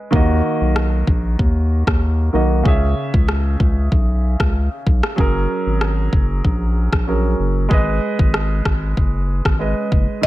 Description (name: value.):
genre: dancehall.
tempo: 95 BPM.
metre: 4/4.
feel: straight.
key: unclear.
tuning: A4 = 441 Hz.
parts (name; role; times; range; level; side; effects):
warm grand piano; accompaniment; 0.0-10.3 s; Db3 to Fb5; -22 LUFS; right 2 dB; sidechain pumping.
saturated sub bass; bass; 0.1-10.3 s; Gb1 to Eb2; -18 LUFS; equal; none.
afro-pop drum kit; drums; 0.1-10.3 s; crash cymbal, kick drum, rim click; -18 LUFS; equal; none.
marimba with medium mallets; melody; 10.2-10.3 s; Eb5; -12 LUFS; left 1 dB; none.
room: small room ambience.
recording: none.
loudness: -15 LUFS.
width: side -16 dB against mid.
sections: 0.0-10.2 A section.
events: none.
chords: 0.1 Ebm; 2.7 Dbm; 5.2 Gbadd9; 7.7 Abm.